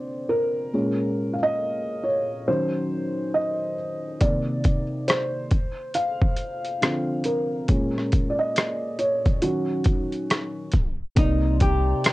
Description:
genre	lo-fi hip hop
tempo	69 BPM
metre	4/4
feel	swing 61% on 16ths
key	unclear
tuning	A4 = 440 Hz
part	felt-muted upright piano	accompaniment	0.0-12.1 s	Bb2 to F5	-24 LUFS	equal	cassette tape
part	boom bap sampler-style drum kit	drums	4.2-12.1 s	hi-hat, kick drum, rim click	-21 LUFS	equal	overdrive, vintage 12-bit sampler grit
part	vintage hollow-body jazz guitar	melody	11.2-12.1 s	Eb4 to G4	-25 LUFS	equal	none
part	warbly tape-like pad	sustained chords	11.2-12.1 s	Eb4 to C6	-37 LUFS	left 2 dB	chorus, built-in reverb
part	warm sub bass	bass	11.2-11.9 s	C2	-23 LUFS	equal	none
room	light reverb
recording	worn, warbling old tape, cassette tape, warbly pitch drift, tape stop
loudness	-22 LUFS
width	side -18 dB against mid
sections	0.0-11.2 A section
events	felt piano solo 0.0-11.2; tape stop 10.7-11.2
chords	0.0 Dm7; 0.7 Bbm7; 2.5 Ebm7; 4.2 Cm9; 5.5 Dm7; 7.7 Bbm7; 9.4 Ebm7; 11.2 Cm9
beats	| 0.74 1.60 2.48 3.34 | 4.21 5.08 5.95 6.82 | 7.69 8.56 9.43 10.30 | 11.17 12.04

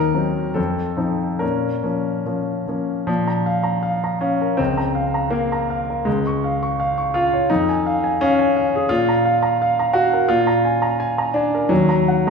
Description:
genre	classical, romantic character piece for solo piano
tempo	68-88 BPM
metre	2/4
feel	rubato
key	Bb minor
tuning	A4 = 441 Hz
part	warm grand piano	solo	0.0-12.3 s	Db2 to Db6	-17 LUFS	equal	none
room	wet recital hall reverb, RT60 1.3 s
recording	recorded in a church or concert hall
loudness	-17 LUFS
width	side -5 dB against mid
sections	0.0-3.1 A section; 3.1-12.3 B section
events	none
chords	0.0 Cdim/Eb; 0.6 F7; 1.4 Bbm; 4.6 Bbm/Db; 6.1 Db; 7.5 Db/F; 8.9 Bb5; 11.7 Ebm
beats	0.57 | 1.42 2.26 | 3.08 3.84 | 4.59 5.32 | 6.06 6.79 | 7.50 8.20 | 8.90 9.59 | 10.28 10.98 | 11.71

